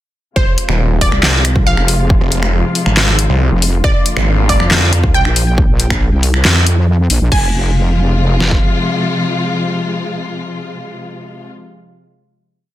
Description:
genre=heavy wobble dubstep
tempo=138 BPM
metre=4/4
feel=half-time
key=F dorian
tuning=A4 = 440 Hz
part: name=wide unison pluck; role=melody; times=0.4-11.5 s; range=C5 to Ab5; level=-20 LUFS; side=right 1 dB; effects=phaser, tape echo
part: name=warm symphonic string section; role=sustained chords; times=0.4-11.5 s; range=C3 to F4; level=-20 LUFS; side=left 2 dB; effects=sidechain pumping, low-pass filter
part: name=wobble bass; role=bass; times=0.4-8.6 s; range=F1 to F2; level=-13 LUFS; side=equal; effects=chorus, overdrive
part: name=dubstep drum kit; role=drums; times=0.4-8.6 s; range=kick drum, snare drum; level=-14 LUFS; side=equal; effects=none
part: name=dubstep drum kit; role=drums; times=0.6-7.4 s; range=crash cymbal, finger snaps, handclaps, hi-hat, snare drum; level=-16 LUFS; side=left 1 dB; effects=none
part: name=snarling distorted saw bass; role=bass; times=0.7-4.6 s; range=Eb1 to C2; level=-13 LUFS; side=equal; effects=distortion, overdrive
room=little or no reverb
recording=dense, heavily limited modern master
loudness=-11 LUFS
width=side -14 dB against mid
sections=0.4-7.3 drop; 7.3-10.8 final chord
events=drop 0.4-7.3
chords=0.4 Fm; 3.8 Bb; 7.3 Fm

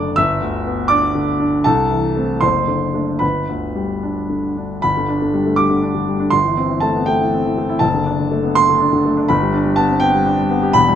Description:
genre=classical, virtuoso piano study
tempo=73-84 BPM (dotted quarters)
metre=6/8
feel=rubato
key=G major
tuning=A4 = 440 Hz
part: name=warm concert grand piano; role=solo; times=0.0-11.0 s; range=E1 to E6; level=-14 LUFS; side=equal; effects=none
room=moderate recital hall reverb, RT60 1.6 s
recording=close, detailed microphones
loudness=-15 LUFS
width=side -9 dB against mid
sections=0.0-4.8 A section; 4.8-11.0 A section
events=none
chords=0.2 G; 1.7 Am/C; 2.4 D7/F#; 3.2 G; 6.3 Am7/G; 7.8 D/F#; 9.3 G

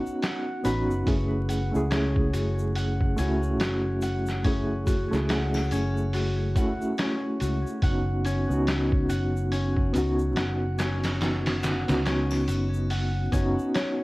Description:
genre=trip hop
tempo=71 BPM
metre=4/4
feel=swing 59% on 16ths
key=F# dorian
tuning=A4 = 440 Hz
part: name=mellow reed electric piano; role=accompaniment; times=0.0-14.0 s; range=A3 to G#4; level=-28 LUFS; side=equal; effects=tremolo, vintage 12-bit sampler grit, tape echo
part: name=concert harp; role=arpeggios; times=0.0-14.0 s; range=C#4 to F#5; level=-32 LUFS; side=left 2 dB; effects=vintage 12-bit sampler grit, digital delay
part: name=tube shaker and triangle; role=percussion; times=0.1-13.9 s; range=none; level=-48 LUFS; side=left 3 dB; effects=none
part: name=trip hop sampler-style drum kit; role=drums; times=0.2-14.0 s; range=hi-hat, kick drum, snare drum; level=-29 LUFS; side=equal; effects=none
part: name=fingered electric bass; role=bass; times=0.7-13.5 s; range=F#1 to C#2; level=-27 LUFS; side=equal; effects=none
room=digital ambience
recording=worn, warbling old tape, cassette tape, vinyl crackle, warbly pitch drift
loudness=-23 LUFS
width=side -20 dB against mid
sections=0.0-14.0 A section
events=none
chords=0.0 Badd9; 1.1 F#m7; 7.8 Badd9/F#

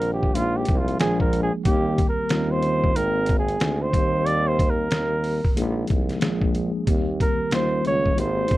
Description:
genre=hip hop, jazz-hop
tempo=92 BPM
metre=4/4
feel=swing 63% on 16ths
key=Eb major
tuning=A4 = 439 Hz
part: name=breathy flugelhorn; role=melody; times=0.0-8.6 s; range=F4 to D5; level=-24 LUFS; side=right 2 dB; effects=none
part: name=mellow tine electric piano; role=accompaniment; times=0.0-8.6 s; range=Eb3 to G5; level=-27 LUFS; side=left 1 dB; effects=medium stereo tremolo
part: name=warm tuba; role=bass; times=0.0-8.6 s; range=Ab1 to Eb2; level=-26 LUFS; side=equal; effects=none
part: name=trip hop sampler-style drum kit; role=drums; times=0.0-8.6 s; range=hi-hat, kick drum, snare drum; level=-23 LUFS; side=equal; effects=none
room=little or no reverb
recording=dry, close 1970s-style studio recording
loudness=-20 LUFS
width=side -17 dB against mid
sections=0.0-8.6 A section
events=flugelhorn solo 0.0-8.6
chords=0.3 Bb7sus4; 1.0 Bb7; 1.7 Eb6; 2.3 Eb13; 3.0 Abmaj9; 3.9 Eb6; 5.6 Bb7sus4; 6.2 Bb7; 6.9 Eb6; 7.5 Eb13

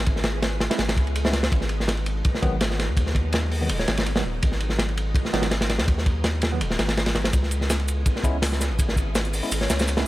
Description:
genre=drum and bass, jungle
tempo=165 BPM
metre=4/4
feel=swing 53% on 16ths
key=C# minor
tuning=A4 = 440 Hz
part: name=soft string machine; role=sustained chords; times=0.0-10.0 s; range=D#3 to G#4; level=-34 LUFS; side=equal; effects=ensemble chorus
part: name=saturated sub bass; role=bass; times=0.0-10.0 s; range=D#1 to D#2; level=-26 LUFS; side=equal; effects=tube saturation
part: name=crunchy breakbeat drum kit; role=drums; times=0.1-10.1 s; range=hi-hat, kick drum, ride cymbal, snare drum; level=-23 LUFS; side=equal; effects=none
part: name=tine electric piano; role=stabs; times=0.7-10.0 s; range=D#3 to E4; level=-32 LUFS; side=right 2 dB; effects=medium stereo tremolo, vintage 12-bit sampler grit, dub echo
part: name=soft struck synth lead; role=melody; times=3.8-4.0, 9.6-9.8 s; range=C#5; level=-34 LUFS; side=left 1 dB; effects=chorus, dub echo
part: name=breakbeat sampler-style drum kit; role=drums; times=7.3-10.1 s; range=hi-hat, shaker, snare drum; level=-32 LUFS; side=right 1 dB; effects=high-pass filter on perc, high-pass filter on snare, high-pass filter on hats
room=small room ambience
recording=none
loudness=-21 LUFS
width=side -17 dB against mid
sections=0.0-10.1 A section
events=none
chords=0.0 C#m7; 1.5 G#m7; 7.3 C#m7

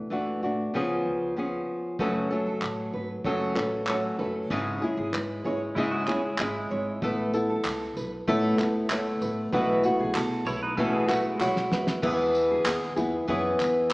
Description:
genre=acoustic pop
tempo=96 BPM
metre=4/4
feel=straight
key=E major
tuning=A4 = 440 Hz
part: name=flamenco guitar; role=accompaniment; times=0.0-13.9 s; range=F#2 to A4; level=-26 LUFS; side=equal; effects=none
part: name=upright bass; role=bass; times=0.1-13.9 s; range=F#1 to B2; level=-38 LUFS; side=equal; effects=none
part: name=fingerpicked steel-string acoustic guitar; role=arpeggios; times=2.0-13.8 s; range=G#4 to E5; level=-34 LUFS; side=right 2 dB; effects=none
part: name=cloth-damped thuddy drum kit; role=drums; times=2.0-13.7 s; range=crash cymbal, handclaps, kick drum, snare drum, tambourine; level=-33 LUFS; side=equal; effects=none
part: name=pedal steel guitar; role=second line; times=5.8-12.0 s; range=G#3 to C#5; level=-33 LUFS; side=right 1 dB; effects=none
part: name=group handclap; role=percussion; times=7.6-13.9 s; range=none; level=-38 LUFS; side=right 1 dB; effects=none
room=wet recital hall reverb, RT60 1.6 s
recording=recorded in a church or concert hall, small speaker sound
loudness=-24 LUFS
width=side -23 dB against mid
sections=0.0-2.0 A section; 2.0-12.0 B section; 12.0-13.9 C section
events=drum fill 11.4-12.0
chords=0.0 D; 0.7 C#7; 2.0 F#m; 4.5 C#m/G#; 7.0 Asus2; 9.5 B7sus4; 12.0 E

